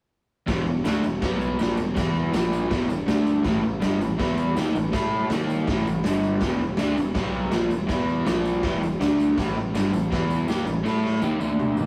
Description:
garage rock duo or trio; 162 BPM; 4/4; straight; A4 = 440 Hz
crunchy overdriven guitar; riff; 0.5-11.9 s; E2 to A4; -25 LUFS; equal
growling picked electric bass; bass; 0.5-11.9 s; E1 to A2; -35 LUFS; equal; overdrive
raw garage drum kit; drums; 0.5-11.9 s; crash cymbal, kick drum, snare drum, toms; -30 LUFS; equal
tambourine; percussion; 0.5-11.9 s; -54 LUFS; equal
moderate small room reverb, RT60 0.6 s; rough rehearsal-room recording, warm saturation; -24 LUFS; mono
0.5-11.9 A section
drum fill 10.8-11.9
0.5 E5; 1.2 B5; 1.6 E5; 2.3 A#5; 2.7 E5; 3.1 D5; 3.4 A5; 4.2 E5; 4.6 A5; 5.3 D#5; 5.7 A5; 6.0 G5; 6.4 E5; 7.2 B5; 7.5 E5; 8.3 A#5; 8.6 E5; 9.0 D5; 9.4 A5; 10.1 E5; 10.5 A5; 11.4 D5

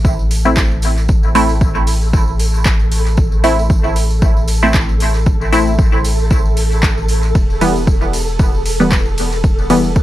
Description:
dub techno; 115 BPM; 4/4; swing 56% on 16ths; A minor; A4 = 440 Hz
soft dub sub bass; bass; 0.0-10.0 s; E1 to A1; -16 LUFS; equal; transformer saturation, sidechain pumping
electronic kick drum; drums; 0.0-10.0 s; -14 LUFS; equal; overdrive, studio reverb
tambourine; percussion; 0.0-10.0 s; -30 LUFS; right 3 dB
flickering grainy texture; texture; 0.0-10.0 s; A4; -26 LUFS; right 1 dB; built-in reverb, sidechain pumping
deep house drum kit; drums; 0.3-10.0 s; handclaps, hi-hat, ride cymbal; -24 LUFS; equal; overdrive, studio reverb, dub echo
filtered dub chord stab; stabs; 0.5-9.9 s; E3 to E4; -17 LUFS; equal; chorus, phaser, cassette tape, sidechain pumping, dub echo
digital ambience; dry, gritty hardware recording, vinyl crackle; -11 LUFS; side -14 dB against mid
0.0-10.0 A section
0.0 Am; 7.4 Em

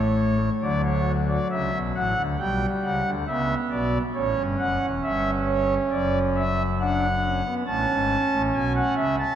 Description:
classical, baroque-style 3-part fugue for pipe organ; 68 BPM; 4/4; straight; D major; A4 = 435 Hz
pipe organ, foundations; solo; 0.0-9.4 s; E1 to A5; -21 LUFS; equal
wet church reverb, RT60 3.4 s; -22 LUFS; side -10 dB against mid
0.6-9.4 A section
0.0 F#m (rootless); 0.6 D; 2.4 G/B; 4.1 A7; 5.9 D/F#; 7.7 A

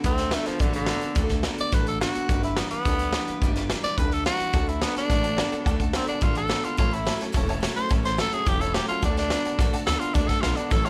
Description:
rockabilly; 214 BPM; 4/4; straight; D major; A4 = 439 Hz
picked steel-string acoustic guitar; accompaniment; 0.0-10.9 s; A2 to B4; -38 LUFS; equal
electric guitar through a small old amp; riff; 0.0-10.9 s; G2 to B3; -34 LUFS; equal
upright bass; bass; 0.0-10.9 s; E1 to D2; -32 LUFS; equal
raw garage drum kit; drums; 0.0-10.9 s; hi-hat, kick drum, snare drum; -28 LUFS; equal
raspy tenor saxophone; melody; 0.1-10.9 s; D3 to D5; -30 LUFS; equal
honky-tonk upright piano; accompaniment; 4.5-10.9 s; C#5 to A5; -38 LUFS; equal
small room ambience; -25 LUFS; mono
0.0-10.9 A section
0.0 D; 2.3 G; 4.5 D; 6.8 A; 9.0 D

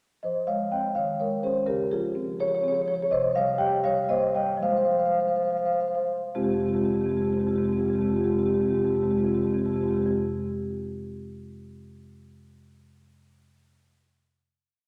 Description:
classical, contemporary piece for solo marimba; 66-85 BPM (dotted quarters); 6/8; rubato; F minor; A4 = 440 Hz
marimba with medium mallets; solo; 0.2-10.1 s; F2 to G5; -26 LUFS; equal
wet scoring stage reverb, RT60 1.9 s; -26 LUFS; mono
0.2-6.3 A section; 6.3-9.9 final chord
slowing down 2.4-6.3
0.2 Fm7; 1.0 Eb7sus4; 1.7 Dbmaj7; 3.1 Cm7; 4.6 Fmadd11; 6.3 Fmadd9

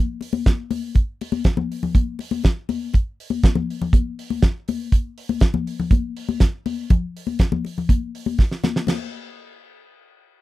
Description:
disco; 121 BPM; 4/4; straight
damped 70s drum kit; drums; 0.2-9.0 s; crash cymbal, hi-hat, kick drum, snare drum; -16 LUFS; right 1 dB
congas; percussion; 0.2-9.1 s; -25 LUFS; left 6 dB
little or no reverb; dry, close 1970s-style studio recording; -19 LUFS; side -16 dB against mid
0.0-8.9 A section; 8.9-10.4 B section
drum fill 8.4-8.9

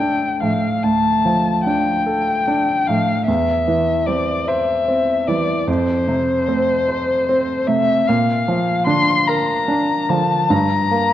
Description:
classical, slow romantic movement for piano trio; 50 BPM (dotted quarters); 12/8; rubato; D minor; A4 = 440 Hz
muted violin; melody; 0.0-11.1 s; C5 to C6; -19 LUFS; left 4 dB
clear grand piano; accompaniment; 0.0-11.1 s; D2 to C5; -18 LUFS; right 2 dB
muted cello; second line; 0.4-10.4 s; D3 to A3; -27 LUFS; right 6 dB
moderate scoring stage reverb, RT60 1.7 s; worn, warbling old tape, cassette tape, warbly pitch drift; -15 LUFS; side -12 dB against mid
0.0-11.1 A section
0.0 Dm; 3.3 C/E; 5.7 F; 8.1 Bb; 10.5 Eb/G (rootless)

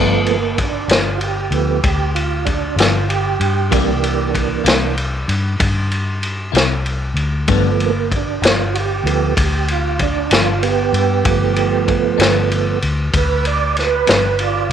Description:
slow blues; 64 BPM (dotted quarters); 12/8; straight; G mixolydian; A4 = 439 Hz
clean electric guitar; accompaniment; 0.0-14.3 s; G2 to E4; -22 LUFS; left 13 dB; harmonic tremolo
tonewheel organ; sustained chords; 0.0-14.7 s; E3 to D5; -19 LUFS; right 9 dB; slow rotary speaker, overdrive, chorus vibrato
vintage muted fingered electric bass; bass; 0.0-14.7 s; G1 to G2; -20 LUFS; left 1 dB
vintage drum kit; drums; 0.3-14.7 s; kick drum, ride cymbal, snare drum; -18 LUFS; left 1 dB
wet spring reverb, RT60 1.6 s, small room ambience; 1960s-style stereo with parts hard left and right; -14 LUFS; side -9 dB against mid
0.0-14.7 A section
tonewheel organ solo 0.0-14.7
0.0 G7; 3.7 C7; 7.5 G7

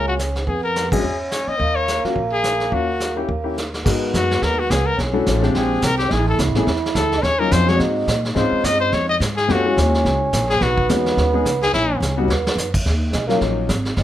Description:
jazz, small-group swing and bop; 213 BPM; 4/4; swing 59% on 8ths; Eb minor, G# minor from 3.8 s; A4 = 435 Hz
bright trumpet; melody; 0.0-12.0 s; E4 to Eb5; -21 LUFS; left 3 dB
trombone with cup mute; second line; 0.0-14.0 s; Ab3 to E4; -24 LUFS; right 4 dB
warm baby grand piano; accompaniment; 0.0-13.7 s; F#3 to A#4; -22 LUFS; left 4 dB
upright bass; bass; 0.0-14.0 s; Gb1 to A#2; -22 LUFS; right 1 dB
vintage brush drum kit; drums; 0.2-14.0 s; brushed snare drum, crash cymbal, hi-hat, kick drum, ride cymbal, snare drum; -25 LUFS; right 1 dB
moderate studio reverb, RT60 0.6 s; -16 LUFS; side -12 dB against mid
0.0-3.8 A section; 3.8-12.8 B section; 12.8-14.0 C section
band accent 0.9; drum fill 3.6, 12.0-12.6; trombone solo 12.8-14.0
0.5 Fdim; 1.0 E6; 1.6 Ebm9; 3.3 Eb7b9; 3.8 G#m9; 5.0 Bm11; 5.5 A#13; 6.1 Amaj7; 7.2 D#m9; 7.8 G#9; 8.3 C#maj9; 9.5 F#7; 10.6 B69; 11.7 A#dim; 12.3 B/D#; 12.8 Ebm9

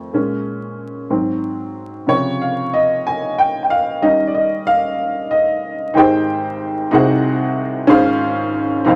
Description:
gospel; 62 BPM (dotted quarters); 6/8; straight; Ab major; A4 = 442 Hz
warm upright piano; solo; 0.0-9.0 s; F1 to Ab5; -18 LUFS; equal
wet studio reverb, RT60 0.5 s; vinyl crackle; -17 LUFS; mono
0.0-6.0 A section; 6.0-9.0 B section
upright piano solo 0.0-6.0
0.1 Bbm7; 1.1 Ab7; 2.1 Dbmaj7; 4.0 Eb9; 6.0 Abmaj7; 6.9 Ab7/C; 7.9 Dbmaj7/Ab

